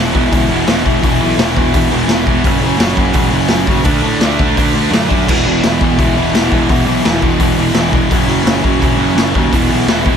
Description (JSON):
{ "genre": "punk rock", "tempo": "170 BPM", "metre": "4/4", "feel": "straight", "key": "unclear", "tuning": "A4 = 439 Hz", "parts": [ { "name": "crunchy overdriven guitar", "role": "riff", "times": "0.0-10.2 s", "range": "E2 to D4", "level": "-16 LUFS", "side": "right 12 dB", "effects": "none" }, { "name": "tight distorted guitar", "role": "riff", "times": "0.0-10.2 s", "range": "E2 to D4", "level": "-17 LUFS", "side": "left 13 dB", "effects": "distortion" }, { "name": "fuzz picked electric bass", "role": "bass", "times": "0.0-10.2 s", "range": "E1 to A2", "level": "-19 LUFS", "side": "left 1 dB", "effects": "overdrive" }, { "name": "raw garage drum kit", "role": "drums", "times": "0.1-10.1 s", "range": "crash cymbal, hi-hat, kick drum, snare drum", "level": "-15 LUFS", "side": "left 1 dB", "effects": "none" } ], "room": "light reverb", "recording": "none", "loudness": "-10 LUFS", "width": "side -7 dB against mid", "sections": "0.0-10.2 A section", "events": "none", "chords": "0.0 E5; 2.4 F#5; 3.9 D; 5.3 E5; 8.1 F#5; 9.5 E5" }